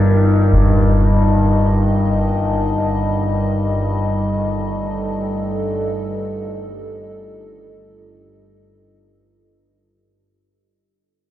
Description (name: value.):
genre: dark ambient drone.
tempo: free time.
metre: none.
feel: none.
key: unclear.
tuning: A4 = 440 Hz.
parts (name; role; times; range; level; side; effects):
dark analog pad; sustained chords; 0.0-10.0 s; G3 to Eb5; -20 LUFS; equal; chorus.
overtone-sweeping drone; drone; 0.0-10.1 s; G1 to G2; -18 LUFS; left 1 dB; chorus, built-in reverb.
concert bass drum; percussion; 0.5-0.7 s; none; -20 LUFS; equal; low-pass filter on kick.
room: wet huge ambient reverb, RT60 7.5 s.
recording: none.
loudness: -15 LUFS.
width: side -13 dB against mid.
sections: 0.0-10.0 A section.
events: fade-out 0.0-10.0.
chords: 0.0 Eb/G.